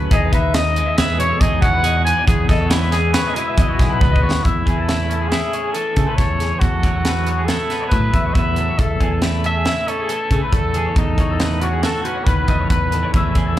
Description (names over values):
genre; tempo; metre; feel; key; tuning
math rock and midwest emo; 138 BPM; 5/4; straight; E major; A4 = 441 Hz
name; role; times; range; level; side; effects
twangy electric guitar; accompaniment; 0.0-13.6 s; E2 to G#4; -26 LUFS; right 7 dB; tremolo, slapback echo
electric guitar through a small old amp; arpeggios; 0.0-13.6 s; E4 to E5; -25 LUFS; left 5 dB; lush chorus, slapback echo
warm trumpet; melody; 0.1-13.6 s; D#4 to G#5; -22 LUFS; left 1 dB; slapback echo
fingered electric bass; bass; 0.1-13.6 s; B1 to C#3; -20 LUFS; equal; none
crisp fusion drum kit; drums; 0.1-13.5 s; hi-hat, kick drum, snare drum, toms; -19 LUFS; equal; none
room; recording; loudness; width
small room ambience; live gig heard through the venue's PA, club reverb; -15 LUFS; side -13 dB against mid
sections
0.0-4.4 A section; 4.4-13.6 B section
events
drum fill 4.0-4.4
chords
0.1 Emaj7; 4.4 Amaj7/E; 6.6 F#m11/E; 8.8 Amaj7/E; 11.0 B9/E